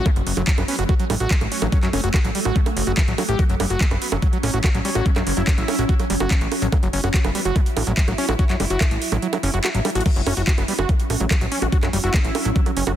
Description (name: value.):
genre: psychedelic trance.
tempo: 144 BPM.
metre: 4/4.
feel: straight.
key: F# phrygian.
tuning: A4 = 440 Hz.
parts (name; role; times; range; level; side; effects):
evolving wavetable pad; sustained chords; 0.0-13.0 s; F#3 to E4; -28 LUFS; right 1 dB; chorus, built-in reverb, sidechain pumping.
overdriven acid bass; riff; 0.0-12.9 s; E3 to G4; -26 LUFS; moving between left 6 dB and right 6 dB; distortion, auto-pan, cassette tape, sidechain pumping, digital delay.
electronic kick drum; drums; 0.1-12.6 s; none; -19 LUFS; equal; overdrive.
garage drum kit; drums; 0.1-13.0 s; bongos, crash cymbal, handclaps, hi-hat; -25 LUFS; right 4 dB; overdrive.
plucky analog bass; bass; 0.2-12.9 s; F#1 to F#2; -23 LUFS; equal; none.
metallic wobble bass; second line; 0.6-12.6 s; B3 to E4; -34 LUFS; right 2 dB; chorus, sidechain pumping, high-pass filter, ping-pong delay.
room: digital ambience.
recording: dense, heavily limited modern master.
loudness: -18 LUFS.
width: side -11 dB against mid.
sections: 0.0-13.0 A section.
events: kick drops out 9.2-10.1; drum fill 9.8.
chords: 0.0 F#5.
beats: | 0.06 0.47 0.89 1.31 | 1.72 2.14 2.56 2.97 | 3.39 3.81 4.22 4.64 | 5.06 5.47 5.89 6.31 | 6.72 7.14 7.56 7.97 | 8.39 8.81 9.22 9.64 | 10.06 10.47 10.89 11.31 | 11.72 12.14 12.56.